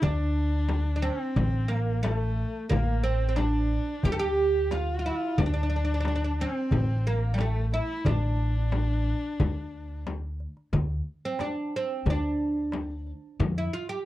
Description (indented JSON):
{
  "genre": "Turkish makam ensemble",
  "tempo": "90 BPM",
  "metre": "4/4",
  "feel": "straight",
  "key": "D makam ussak",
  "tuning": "A4 = 443 Hz",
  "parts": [
    { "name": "oud", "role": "melody", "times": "0.0-14.1 s", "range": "G3 to A4", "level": "-30 LUFS", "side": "right 3 dB", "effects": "none" },
    { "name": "clear kamancheh", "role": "second line", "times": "0.0-10.1 s", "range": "A3 to G4", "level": "-34 LUFS", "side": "left 3 dB", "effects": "none" },
    { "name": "upright bass", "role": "bass", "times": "0.0-13.7 s", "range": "A1 to F2", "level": "-28 LUFS", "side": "equal", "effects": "none" },
    { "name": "darbuka", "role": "percussion", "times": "0.0-13.7 s", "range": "none", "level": "-30 LUFS", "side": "right 1 dB", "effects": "none" },
    { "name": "frame drum", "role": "percussion", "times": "0.0-13.6 s", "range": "none", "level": "-32 LUFS", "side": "left 3 dB", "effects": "none" }
  ],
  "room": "light reverb",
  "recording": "dark, warm production, tape saturation",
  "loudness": "-25 LUFS",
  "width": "side -15 dB against mid",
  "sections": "0.0-10.7 A section; 10.7-14.1 B section",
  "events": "none",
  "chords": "none"
}